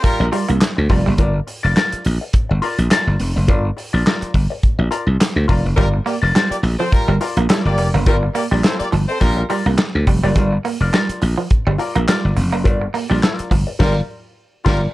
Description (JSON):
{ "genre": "funk", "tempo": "105 BPM", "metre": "4/4", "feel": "swing 56% on 16ths", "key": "G minor", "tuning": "A4 = 440 Hz", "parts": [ { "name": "clear horn section", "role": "second line", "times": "0.0-0.3, 5.8-9.4, 13.8-14.8 s", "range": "G3 to D5", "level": "-22 LUFS", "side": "left 1 dB", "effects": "plate reverb" }, { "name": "semi-hollow electric guitar", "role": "riff", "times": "0.0-1.2, 5.8-13.6 s", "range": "F3 to Bb3", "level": "-23 LUFS", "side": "right 5 dB", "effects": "warbly pitch drift" }, { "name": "warm soul drum kit", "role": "drums", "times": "0.0-14.9 s", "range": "crash cymbal, handclaps, hi-hat, kick drum, snare drum", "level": "-18 LUFS", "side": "equal", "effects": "none" }, { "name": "vintage hollow-body jazz guitar", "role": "accompaniment", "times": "0.2-14.9 s", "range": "F4 to D5", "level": "-23 LUFS", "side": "left 3 dB", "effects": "wah" }, { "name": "slap bass", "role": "bass", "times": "0.2-14.9 s", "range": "F1 to D2", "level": "-17 LUFS", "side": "equal", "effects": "none" } ], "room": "light reverb", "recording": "dark, warm production", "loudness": "-15 LUFS", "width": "side -17 dB against mid", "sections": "0.0-14.9 A section", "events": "band accent 13.8-14.9", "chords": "0.0 Gm7" }